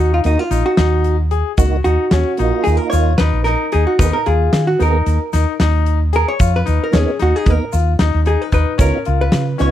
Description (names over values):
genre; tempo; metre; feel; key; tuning
progressive instrumental, band music in an uneven meter; 224 BPM (eighths); 9/8; straight; unclear; A4 = 439 Hz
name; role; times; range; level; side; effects
vintage hollow-body jazz guitar; melody; 0.0-9.7 s; Eb4 to Db5; -19 LUFS; right 1 dB; none
bright concert grand piano; arpeggios; 0.0-9.7 s; Db4 to Ab4; -22 LUFS; left 12 dB; none
woody fretless electric bass; bass; 0.0-9.7 s; Bb1 to Eb3; -16 LUFS; equal; lush chorus
mellow tonewheel organ; accompaniment; 0.2-9.7 s; Bb3 to Ab4; -21 LUFS; right 8 dB; chorus vibrato, fast rotary speaker
big rock drum kit; drums; 0.2-9.7 s; hi-hat, kick drum, snare drum; -18 LUFS; equal; none
egg shaker; percussion; 0.3-9.7 s; none; -35 LUFS; right 16 dB; none
room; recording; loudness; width
little or no reverb; dry, close 1970s-style studio recording; -13 LUFS; side -12 dB against mid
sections
0.0-9.7 A section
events
hollow-body jazz guitar solo 0.0-9.7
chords
0.0 Ebm; 4.0 Abmadd9/Eb; 8.8 Db7